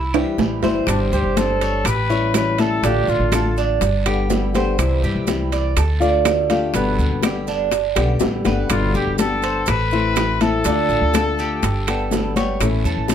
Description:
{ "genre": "latin, Cuban son and guajira", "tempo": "123 BPM", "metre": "4/4", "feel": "straight", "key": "unclear", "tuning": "A4 = 440 Hz", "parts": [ { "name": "Cuban tres", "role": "arpeggios", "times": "0.0-13.1 s", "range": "B3 to D5", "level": "-24 LUFS", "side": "right 8 dB", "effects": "none" }, { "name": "upright bass", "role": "bass", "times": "0.0-13.1 s", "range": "G1 to G2", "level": "-22 LUFS", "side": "right 1 dB", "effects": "none" }, { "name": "flamenco guitar", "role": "accompaniment", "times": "0.1-13.1 s", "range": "B2 to G4", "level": "-22 LUFS", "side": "left 5 dB", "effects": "none" }, { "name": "claves", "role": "percussion", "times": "0.1-12.9 s", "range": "none", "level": "-32 LUFS", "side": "right 3 dB", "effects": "none" }, { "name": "timbales", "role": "percussion", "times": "0.1-13.1 s", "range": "none", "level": "-24 LUFS", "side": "right 10 dB", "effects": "none" }, { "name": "congas", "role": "percussion", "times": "0.2-13.1 s", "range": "none", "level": "-26 LUFS", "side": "left 4 dB", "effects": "none" }, { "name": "bongos", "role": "percussion", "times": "0.4-13.1 s", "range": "none", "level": "-28 LUFS", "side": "left 7 dB", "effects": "none" }, { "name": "guiro", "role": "percussion", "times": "0.4-13.1 s", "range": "none", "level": "-36 LUFS", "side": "right 3 dB", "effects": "none" }, { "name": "clear trumpet", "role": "melody", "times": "0.9-3.6, 8.7-12.4 s", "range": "D4 to B4", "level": "-23 LUFS", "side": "left 4 dB", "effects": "slapback echo" }, { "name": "maracas", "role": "percussion", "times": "0.9-13.1 s", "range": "none", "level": "-33 LUFS", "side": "right 8 dB", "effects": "none" } ], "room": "little or no reverb", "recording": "close, detailed microphones", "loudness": "-16 LUFS", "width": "side -9 dB against mid", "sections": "0.0-13.1 A section", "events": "drum fill 0.1-0.9, 8.0-8.7", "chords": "0.0 C; 0.9 Gsus4; 1.9 A7; 2.8 Dm/A; 3.8 G; 4.8 C; 5.8 Dm; 6.7 G; 9.7 Am; 10.7 Dm; 11.6 Gadd9; 12.6 A" }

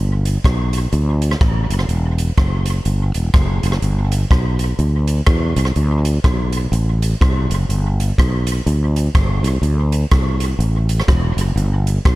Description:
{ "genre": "ska", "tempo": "124 BPM", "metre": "4/4", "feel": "swing 61% on 8ths", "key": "unclear", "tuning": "A4 = 440 Hz", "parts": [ { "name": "sustaining fretless electric bass", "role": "bass", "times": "0.0-12.2 s", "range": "E1 to E2", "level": "-16 LUFS", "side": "equal", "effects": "none" }, { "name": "swinging big-band drum kit", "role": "drums", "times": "0.3-12.2 s", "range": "hi-hat, kick drum, rim click", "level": "-19 LUFS", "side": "equal", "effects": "tape echo" } ], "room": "little or no reverb", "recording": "dark, warm production", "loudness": "-15 LUFS", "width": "side -18 dB against mid", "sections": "0.0-12.2 A section", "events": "none", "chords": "none" }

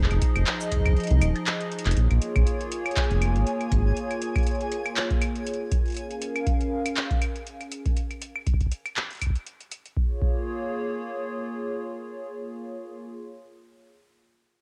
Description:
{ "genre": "IDM", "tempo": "120 BPM", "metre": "4/4", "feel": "swing 56% on 16ths", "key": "Bb minor", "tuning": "A4 = 440 Hz", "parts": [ { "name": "hollow soft pad", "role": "sustained chords", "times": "0.0-13.1 s", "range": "F3 to F5", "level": "-33 LUFS", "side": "equal", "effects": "chorus, cassette tape" }, { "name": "round analog bass", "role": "bass", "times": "0.0-3.9 s", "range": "Eb1 to C2", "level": "-23 LUFS", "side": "equal", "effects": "none" }, { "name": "electro analog drum machine", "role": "drums", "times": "0.0-9.9 s", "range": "claves, handclaps, hi-hat, shaker", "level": "-33 LUFS", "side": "equal", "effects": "none" }, { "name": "electronic kick drum", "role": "drums", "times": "0.2-10.4 s", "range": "none", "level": "-27 LUFS", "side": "equal", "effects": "none" }, { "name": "twinkling granular texture", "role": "texture", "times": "2.4-6.0 s", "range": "Ab5", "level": "-41 LUFS", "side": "equal", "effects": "built-in reverb, cassette tape" } ], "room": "light reverb", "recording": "home recording on cassette", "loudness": "-26 LUFS", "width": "mono", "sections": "0.0-2.0 A section; 2.0-10.0 B section; 10.0-14.0 C section", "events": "kick drops out 1.0-2.0; drum fill 1.7; filter sweep on analog synth pad 2.0-8.0", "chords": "0.0 Ab5; 2.0 Bbm7; 6.0 Db6; 10.0 Bbm7" }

